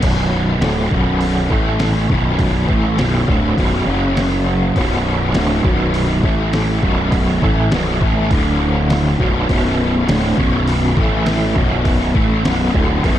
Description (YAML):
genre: psychedelic rock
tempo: 101 BPM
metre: 4/4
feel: straight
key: B minor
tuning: A4 = 435 Hz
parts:
  - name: cranked stack guitar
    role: riff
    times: 0.0-13.2 s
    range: B1 to A3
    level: -16 LUFS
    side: equal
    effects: overdrive, rotary speaker
  - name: fuzz fingered electric bass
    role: bass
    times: 0.0-13.2 s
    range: B0 to A1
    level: -20 LUFS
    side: equal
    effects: overdrive
  - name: trip hop sampler-style drum kit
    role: drums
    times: 0.0-13.2 s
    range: crash cymbal, hi-hat, kick drum, snare drum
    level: -20 LUFS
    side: equal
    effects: overdrive
room: light reverb, digital ambience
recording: none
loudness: -14 LUFS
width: side -11 dB against mid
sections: 0.0-13.2 A section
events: none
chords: 0.0 Bm; 1.5 A5; 2.1 Bm; 3.9 F#5; 4.8 Bm; 6.2 A5; 6.8 B5; 8.3 D5; 9.2 Bm; 11.0 A5; 11.6 Bm